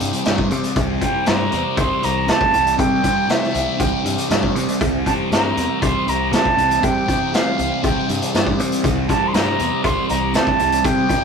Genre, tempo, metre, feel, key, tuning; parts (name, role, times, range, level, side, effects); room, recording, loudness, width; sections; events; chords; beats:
psychedelic rock; 119 BPM; 4/4; straight; C mixolydian; A4 = 442 Hz
string machine, violas; sustained chords; 0.0-11.2 s; E3 to G5; -31 LUFS; right 2 dB
thick fuzz guitar; riff; 0.0-11.2 s; C3 to C4; -21 LUFS; equal; distortion, phaser
picked electric bass; bass; 0.0-11.0 s; C2 to C3; -25 LUFS; left 1 dB
vintage drum kit; drums; 0.0-11.2 s; hi-hat, kick drum, snare drum; -21 LUFS; equal
concert flute; melody; 1.0-11.2 s; E5 to C6; -20 LUFS; right 2 dB
tambourine; percussion; 7.9-11.2 s; -40 LUFS; right 5 dB
moderate small room ambience, RT60 0.5 s; rough rehearsal-room recording, tube saturation; -16 LUFS; side -6 dB against mid
0.0-11.2 A section
flute solo 0.0-11.2
0.0 C
0.26 0.77 1.27 | 1.78 2.29 2.79 3.30 | 3.80 4.31 4.82 5.32 | 5.83 6.33 6.83 7.34 | 7.84 8.34 8.85 9.35 | 9.85 10.35 10.85